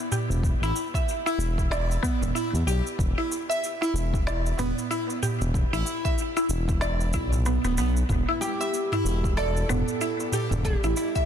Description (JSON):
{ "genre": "organic downtempo", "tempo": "94 BPM", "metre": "4/4", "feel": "swing 59% on 16ths", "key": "E minor", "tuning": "A4 = 440 Hz", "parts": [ { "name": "mallet-like synth pluck", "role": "arpeggios", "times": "0.1-11.3 s", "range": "B3 to E5", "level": "-28 LUFS", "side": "right 1 dB", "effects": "phaser, lush chorus, tape echo, shimmer reverb" }, { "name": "organic electronic drum kit", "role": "drums", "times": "0.1-11.3 s", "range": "shaker, snare drum, toms", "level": "-35 LUFS", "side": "right 1 dB", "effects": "soft clipping on snare" }, { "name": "darbuka", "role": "percussion", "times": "0.1-11.3 s", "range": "none", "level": "-34 LUFS", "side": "right 2 dB", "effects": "none" }, { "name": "smooth gliding synth bass", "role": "bass", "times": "0.3-10.9 s", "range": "D1 to E2", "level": "-26 LUFS", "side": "equal", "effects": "sidechain pumping" }, { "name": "electronic kick drum", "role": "drums", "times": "0.4-11.3 s", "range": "none", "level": "-27 LUFS", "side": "equal", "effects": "none" }, { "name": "oud", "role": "melody", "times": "8.4-11.3 s", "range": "E4 to A4", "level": "-31 LUFS", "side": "left 1 dB", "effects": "digital delay, shimmer reverb" } ], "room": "light reverb, digital ambience", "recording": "dense, heavily limited modern master", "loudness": "-23 LUFS", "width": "side -9 dB against mid", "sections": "0.0-11.3 A section", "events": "none", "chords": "0.0 E5", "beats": "| 0.44 1.07 1.71 2.35 | 2.99 3.63 4.26 4.90 | 5.54 6.18 6.82 7.46 | 8.10 8.73 9.37 10.01 | 10.65" }